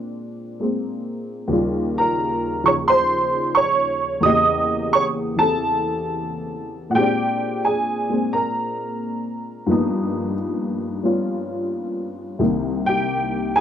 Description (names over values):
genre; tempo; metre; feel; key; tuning
solo jazz; 88 BPM; 4/4; swing 68% on 8ths; unclear; A4 = 439 Hz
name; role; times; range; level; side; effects
honky-tonk upright piano; solo; 0.0-13.6 s; C2 to Eb6; -19 LUFS; equal; none
room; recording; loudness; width
moderate studio reverb, RT60 0.5 s; none; -19 LUFS; side -9 dB against mid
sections
0.0-13.6 A section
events
none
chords
0.0 Bb9; 1.5 Eb9; 4.2 Edim7; 7.0 Bb9; 9.7 G7alt; 12.4 Cm7